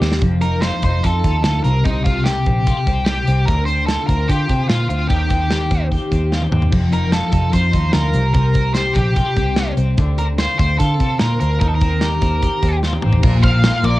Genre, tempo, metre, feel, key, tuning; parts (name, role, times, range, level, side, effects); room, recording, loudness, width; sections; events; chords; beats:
jangly indie pop; 148 BPM; 4/4; straight; Bb major; A4 = 439 Hz
twelve-string electric guitar; arpeggios; 0.0-14.0 s; F2 to G4; -21 LUFS; left 2 dB; harmonic tremolo, cassette tape
vintage muted picked electric bass; bass; 0.0-14.0 s; F1 to D3; -18 LUFS; equal
modern studio drum kit; drums; 0.0-13.9 s; crash cymbal, hi-hat, kick drum, ride cymbal, snare drum, toms; -20 LUFS; equal; cassette tape
octave-fuzz lead guitar; melody; 0.4-14.0 s; Eb4 to F5; -22 LUFS; equal; distortion, cassette tape, tape echo
small room ambience; home recording on cassette; -14 LUFS; side -17 dB against mid
0.0-13.2 A section
drum fill 0.0, 6.3-6.7, 12.8-13.2
0.2 F7; 1.6 C5; 3.5 Bbadd9/D; 5.1 Eb6; 6.7 F5; 8.2 C5; 10.0 Bbadd9/D; 11.6 Eb6; 13.2 Bbsus2
| 0.22 0.63 1.04 1.44 | 1.85 2.26 2.66 3.07 | 3.48 3.88 4.29 4.70 | 5.10 5.51 5.92 6.32 | 6.73 7.13 7.54 7.95 | 8.35 8.76 9.17 9.57 | 9.98 10.39 10.79 11.20 | 11.61 12.01 12.42 12.83 | 13.23 13.64